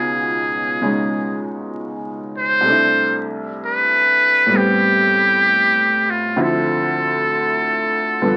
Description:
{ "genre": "jazz", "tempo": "65 BPM", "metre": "4/4", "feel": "swing 66% on 8ths", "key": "unclear", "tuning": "A4 = 441 Hz", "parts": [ { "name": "trumpet with metal mute", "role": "melody", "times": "0.0-8.4 s", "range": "F4 to C5", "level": "-18 LUFS", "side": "equal", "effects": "none" }, { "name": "warm upright piano", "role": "accompaniment", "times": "0.0-8.4 s", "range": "C2 to A4", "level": "-24 LUFS", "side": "equal", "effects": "none" } ], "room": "light reverb", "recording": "very old 78 rpm record, vinyl crackle", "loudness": "-17 LUFS", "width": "mono", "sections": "0.0-8.4 A section", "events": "none", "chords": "0.0 Db9; 2.7 C69; 4.5 Am7; 6.4 Dm7", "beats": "0.81 1.74 | 2.66 3.59 4.51 5.43 | 6.36 7.29 8.21" }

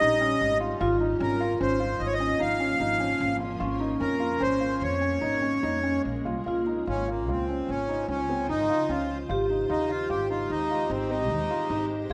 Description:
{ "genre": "contemporary instrumental, chamber music in an uneven meter", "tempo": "149 BPM", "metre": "7/4", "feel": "straight", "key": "unclear", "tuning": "A4 = 440 Hz", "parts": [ { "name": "accordion", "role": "melody", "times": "0.0-11.9 s", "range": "Bb3 to F5", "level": "-30 LUFS", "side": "equal", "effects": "none" }, { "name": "vibraphone with medium mallets", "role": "second line", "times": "0.0-12.1 s", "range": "Db4 to G4", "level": "-33 LUFS", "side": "equal", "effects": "none" }, { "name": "granular cloud pad", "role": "sustained chords", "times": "0.0-12.1 s", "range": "Db3 to C5", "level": "-39 LUFS", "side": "equal", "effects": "built-in reverb" }, { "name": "felt-muted upright piano", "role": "arpeggios", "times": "0.0-12.1 s", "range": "C4 to F4", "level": "-34 LUFS", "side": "equal", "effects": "none" }, { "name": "upright bass", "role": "bass", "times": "0.0-12.1 s", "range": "Ab1 to F2", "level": "-36 LUFS", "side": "equal", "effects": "none" } ], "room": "moderate concert hall reverb, RT60 2.1 s", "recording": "none", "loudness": "-27 LUFS", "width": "mono", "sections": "0.0-6.5 A section; 6.5-12.1 B section", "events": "none", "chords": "0.0 Eb7; 0.8 Db6/Ab; 3.6 Bbm7/Ab; 6.5 Dbmaj7; 9.3 Abmaj7", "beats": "0.01 0.41 | 0.81 1.21 1.60 2.00 2.40 2.80 3.20 | 3.60 4.01 4.41 4.81 5.22 5.63 6.05 | 6.47 6.88 7.28 7.69 8.09 8.49 8.90 | 9.30 9.70 10.11 10.51 10.91 11.31 11.71 | 12.11" }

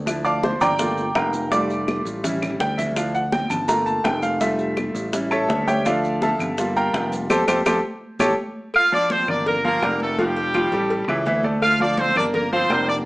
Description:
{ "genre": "latin, salsa", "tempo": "166 BPM", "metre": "4/4", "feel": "straight", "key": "D minor", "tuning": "A4 = 440 Hz", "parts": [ { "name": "fingered electric bass", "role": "bass", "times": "0.0-13.1 s", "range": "F1 to F2", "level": "-27 LUFS", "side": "equal", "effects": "none" }, { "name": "bright concert grand piano", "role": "accompaniment", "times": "0.1-13.0 s", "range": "E3 to D6", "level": "-21 LUFS", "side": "equal", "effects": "none" }, { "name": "bongos and cowbell", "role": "percussion", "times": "0.1-12.9 s", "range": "none", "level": "-29 LUFS", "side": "left 2 dB", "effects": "none" }, { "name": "claves", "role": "percussion", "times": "0.1-12.9 s", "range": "none", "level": "-29 LUFS", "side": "equal", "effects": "none" }, { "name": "congas", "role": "percussion", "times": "0.1-13.1 s", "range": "none", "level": "-31 LUFS", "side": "equal", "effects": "none" }, { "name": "maracas", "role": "percussion", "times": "0.1-8.3 s", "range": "none", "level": "-39 LUFS", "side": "right 2 dB", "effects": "none" }, { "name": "bright horn section", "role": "melody", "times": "8.8-13.0 s", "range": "G3 to F5", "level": "-20 LUFS", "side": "equal", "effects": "none" } ], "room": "moderate studio reverb, RT60 0.8 s", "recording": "small speaker sound", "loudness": "-18 LUFS", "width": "side -21 dB against mid", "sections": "0.0-8.7 A section; 8.7-13.1 B section", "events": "grand piano solo 0.0-8.7; drum fill 1.9-3.0, 7.7-8.7; band accent 7.3-8.7", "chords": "0.1 Dmadd9; 0.8 Gm7; 1.5 Fadd9; 2.2 A7; 3.0 Dmadd9; 3.7 Gm7; 4.4 Fadd9; 5.1 A7; 5.9 Dmadd9; 6.6 Gm7; 7.3 Fadd9; 8.0 A7; 8.7 Dm; 9.5 Gm7; 10.2 Fadd9; 10.9 A7; 11.6 Dm; 12.3 Gm7", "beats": "| 0.07 0.43 0.80 1.16 | 1.52 1.88 2.24 2.60 | 2.96 3.33 3.69 4.05 | 4.41 4.77 5.13 5.49 | 5.86 6.22 6.58 6.94 | 7.30 7.66 8.02 8.38 | 8.74 9.10 9.46 9.82 | 10.18 10.54 10.90 11.27 | 11.62 11.98 12.35 12.71" }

